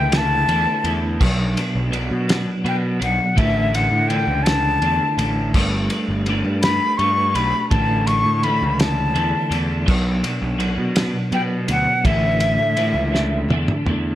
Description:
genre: psychedelic rock.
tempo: 55 BPM (dotted quarters).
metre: 6/8.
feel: straight.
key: unclear.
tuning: A4 = 438 Hz.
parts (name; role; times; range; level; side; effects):
concert flute; melody; 0.0-13.5 s; E5 to C#6; -20 LUFS; left 2 dB; digital delay.
twelve-string electric guitar; riff; 0.0-14.2 s; A2 to B4; -22 LUFS; right 1 dB; rotary speaker.
fuzz picked electric bass; bass; 0.0-14.2 s; G1 to B2; -23 LUFS; equal; overdrive.
cloth-damped thuddy drum kit; drums; 0.1-14.0 s; crash cymbal, kick drum, ride cymbal, snare drum, toms; -24 LUFS; equal; none.
room: little or no reverb.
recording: none.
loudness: -17 LUFS.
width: side -13 dB against mid.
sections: 0.0-14.2 A section.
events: drum fill 13.1-14.2.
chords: 0.0 Asus4; 1.2 Bm; 3.4 Asus4; 5.5 Gadd9; 7.7 Asus4; 9.9 Bm; 12.1 Asus4.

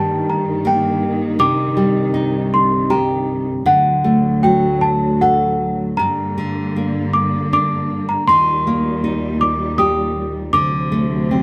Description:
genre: children's music, lullaby.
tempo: 79 BPM.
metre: 3/4.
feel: rubato.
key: G harmonic minor.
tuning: A4 = 441 Hz.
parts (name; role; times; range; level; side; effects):
worn celesta; melody; 0.0-11.4 s; F#5 to Eb6; -20 LUFS; equal; none.
nylon-string guitar; accompaniment; 0.0-11.4 s; G2 to A4; -21 LUFS; equal; none.
rich studio string section; sustained chords; 0.0-11.4 s; C2 to Bb3; -25 LUFS; equal; none.
room: moderate studio reverb, RT60 0.8 s.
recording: band playing live in one room.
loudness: -17 LUFS.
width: mono.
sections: 0.0-11.4 A section.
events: none.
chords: 0.0 Eb/G; 1.4 Cm; 3.7 D; 6.0 Gm; 8.3 Eb; 10.5 D7.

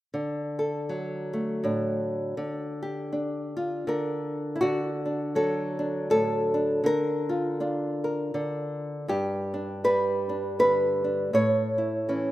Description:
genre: folk, solo fingerstyle acoustic guitar.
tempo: 80 BPM.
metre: 3/4.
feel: swing 59% on 8ths.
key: D major.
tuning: A4 = 440 Hz.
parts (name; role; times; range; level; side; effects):
nylon-string guitar; solo; 0.1-12.3 s; G2 to C#5; -25 LUFS; equal; none.
room: moderate lush hall reverb, RT60 2.4 s.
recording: rough home demo mix.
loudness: -25 LUFS.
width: side -15 dB against mid.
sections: 0.1-4.6 A section; 4.6-12.3 B section.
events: none.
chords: 0.1 D; 2.4 Bb/D; 4.6 D; 6.9 Bb/D; 9.1 G; 11.3 A.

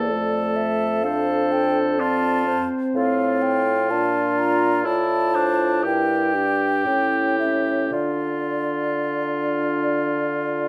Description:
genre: classical, slow romantic movement for wind quintet.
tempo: 51-64 BPM.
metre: 4/4.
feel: rubato.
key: D minor.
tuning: A4 = 440 Hz.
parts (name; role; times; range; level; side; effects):
mellow hollow concert flute; melody; 0.0-10.7 s; D5 to Bb5; -28 LUFS; equal; none.
warm oboe; second line; 0.0-10.7 s; D4 to A4; -28 LUFS; equal; none.
mellow French horn; accompaniment; 0.0-10.7 s; A3 to F4; -28 LUFS; equal; none.
warm clarinet; accompaniment; 0.0-10.7 s; E4 to D5; -31 LUFS; equal; none.
dark bassoon; bass; 0.0-10.7 s; E2 to D3; -28 LUFS; equal; none.
room: moderate recital hall reverb, RT60 1.3 s.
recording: close, detailed microphones.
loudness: -21 LUFS.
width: mono.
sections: 0.0-10.7 A section.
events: none.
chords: 0.1 F; 3.9 Bb; 5.8 Gm; 6.9 A7; 7.9 Dm.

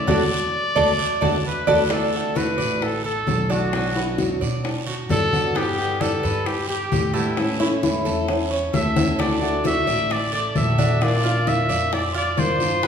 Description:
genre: latin, Cuban son and guajira.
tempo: 132 BPM.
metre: 4/4.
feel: straight.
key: D major.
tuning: A4 = 440 Hz.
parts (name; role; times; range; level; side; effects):
warm trumpet; melody; 0.0-12.9 s; E4 to E5; -24 LUFS; left 1 dB; none.
picked steel-string acoustic guitar; accompaniment; 0.0-12.9 s; B2 to G4; -27 LUFS; left 3 dB; none.
Cuban tres; arpeggios; 0.0-12.9 s; A3 to D5; -26 LUFS; right 2 dB; none.
upright bass; bass; 0.0-12.9 s; A1 to B2; -26 LUFS; right 1 dB; none.
bongos; percussion; 0.1-12.9 s; none; -29 LUFS; left 3 dB; none.
congas; percussion; 0.1-12.9 s; none; -29 LUFS; left 1 dB; none.
guiro; percussion; 0.1-12.9 s; none; -34 LUFS; right 5 dB; none.
nylon-string guitar; second line; 4.0-8.6 s; C#4 to F#4; -27 LUFS; left 1 dB; none.
room: wet recital hall reverb, RT60 1.3 s.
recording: recorded in a church or concert hall, small room ambience.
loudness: -19 LUFS.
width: side -7 dB against mid.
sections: 0.0-1.9 A section; 1.9-12.9 B section.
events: band accent 0.1-1.9; drum fill 1.0-1.9, 9.0.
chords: 0.1 D; 3.7 Bm; 5.6 G; 7.4 A; 9.2 D; 11.0 Bb.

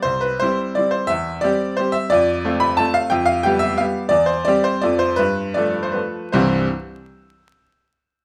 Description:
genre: classical, romantic triple-time dance for piano with dotted rhythms.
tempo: 139-192 BPM.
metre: 3/4.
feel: rubato.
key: C major.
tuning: A4 = 440 Hz.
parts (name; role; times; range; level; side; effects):
bright baby grand piano; solo; 0.0-6.7 s; C2 to B5; -19 LUFS; equal; none.
room: moderate large studio reverb, RT60 1.1 s.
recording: vinyl crackle.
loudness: -19 LUFS.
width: mono.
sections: 0.0-6.4 A section; 6.4-7.6 B section.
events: slowing down 3.6-6.4.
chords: 0.0 C; 1.1 C/E; 2.1 Dm7/F; 3.1 G7/F; 4.1 C/E; 4.8 F; 5.2 G9; 6.4 C.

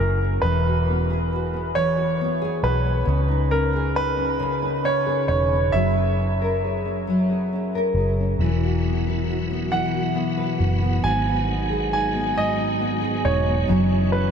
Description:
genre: six-eight pop ballad.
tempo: 45 BPM (dotted quarters).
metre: 6/8.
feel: straight.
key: unclear.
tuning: A4 = 440 Hz.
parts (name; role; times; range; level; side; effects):
bright concert grand piano; melody; 0.0-14.3 s; A#4 to G#5; -24 LUFS; right 2 dB; analog delay.
nylon-string guitar; accompaniment; 0.0-14.3 s; G#2 to B4; -25 LUFS; left 1 dB; double-tracked left and right.
vintage muted fingered electric bass; bass; 0.0-14.3 s; E1 to C#2; -24 LUFS; equal; none.
tonewheel organ; sustained chords; 8.4-14.3 s; B2 to F#4; -27 LUFS; equal; overdrive, chorus vibrato, fast rotary speaker.
room: wet huge ambient reverb, RT60 8.8 s.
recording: dreamy mix soaked in reverb.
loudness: -20 LUFS.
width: side -7 dB against mid.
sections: 0.0-14.3 A section.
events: none.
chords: 0.4 Eadd9; 3.1 C#madd9; 5.7 F#add9; 8.4 Esus2; 11.0 G#m7; 13.7 F#7(no3).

